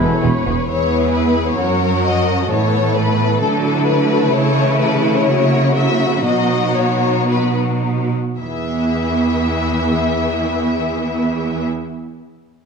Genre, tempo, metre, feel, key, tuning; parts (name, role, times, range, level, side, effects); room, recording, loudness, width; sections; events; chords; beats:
cinematic, heroic adventure film score; 104-132 BPM; 4/4; straight; E major; A4 = 436 Hz
warm symphonic violin section; melody; 0.0-11.7 s; A4 to E5; -21 LUFS; left 6 dB
dark clarinet; second line; 0.0-0.5 s; E4; -34 LUFS; right 3 dB
warm oboe; second line; 0.0-0.5 s; G#5; -34 LUFS; right 1 dB
warm symphonic violin section; second line; 0.0-11.7 s; G#3 to B4; -22 LUFS; left 3 dB
warm symphonic viola section; accompaniment; 0.0-11.6 s; E3 to C#5; -21 LUFS; right 2 dB
dark French horn section; sustained chords; 0.0-0.5 s; B3 to G#4; -28 LUFS; left 4 dB
concert harp; arpeggios; 0.0-1.6 s; E3 to B4; -31 LUFS; left 7 dB
clear trumpet section; stabs; 0.0-0.5 s; E4; -31 LUFS; right 2 dB
clear studio cello section; bass; 0.0-11.7 s; E2 to D3; -19 LUFS; right 3 dB
mellow tuba; bass; 0.0-0.6 s; E1; -26 LUFS; right 3 dB
rich symphonic double bass section; bass; 0.0-0.6 s; E1; -21 LUFS; right 4 dB
moderate scoring stage reverb, RT60 1.6 s; dark, warm production; -14 LUFS; side -5 dB against mid
0.7-8.4 A section; 8.4-12.7 B section
slowing down 3.4-8.4
0.0 E; 1.6 F#; 2.5 Asus2; 3.4 Dadd9; 4.4 A/C#; 5.3 F#7/C#; 6.3 B; 8.4 E
0.22 | 0.69 1.15 1.61 2.07 | 2.52 2.98 3.44 3.89 | 4.35 4.82 5.29 5.77 | 6.26 6.77 7.29 7.83 | 8.40 8.97 9.54 10.12 | 10.69 11.26